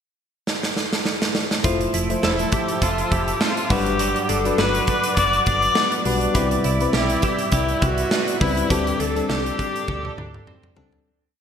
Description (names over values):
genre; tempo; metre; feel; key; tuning
1980s-style pop; 102 BPM; 4/4; swing 55% on 16ths; unclear; A4 = 440 Hz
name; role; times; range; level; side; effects
big rock drum kit; drums; 0.5-11.0 s; hi-hat, kick drum, snare drum, toms; -24 LUFS; right 1 dB; gated reverb
FM electric piano; accompaniment; 1.6-11.1 s; G2 to F#5; -25 LUFS; left 3 dB; chorus
sweeping resonant pad; sustained chords; 1.6-11.0 s; A4 to E6; -28 LUFS; right 2 dB; chorus
twelve-string electric guitar; riff; 1.6-11.4 s; F3 to A4; -29 LUFS; right 6 dB; analog chorus, ping-pong delay
solid FM bass; bass; 1.6-11.0 s; E1 to D2; -26 LUFS; equal; none
rich viola; melody; 2.2-10.5 s; E4 to D5; -24 LUFS; left 3 dB; ping-pong delay
room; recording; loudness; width
wet lush hall reverb, RT60 2.4 s; bright 1980s-style digital production; -18 LUFS; side -8 dB against mid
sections
0.0-1.6 pickup bar; 1.6-11.1 pre-chorus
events
drum fill 0.5-1.6, 9.9-11.1; fade-out 8.7-11.1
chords
0.0 N.C.; 1.6 Fmaj7; 3.7 Gmaj7; 6.4 Cmaj7; 8.7 D7sus4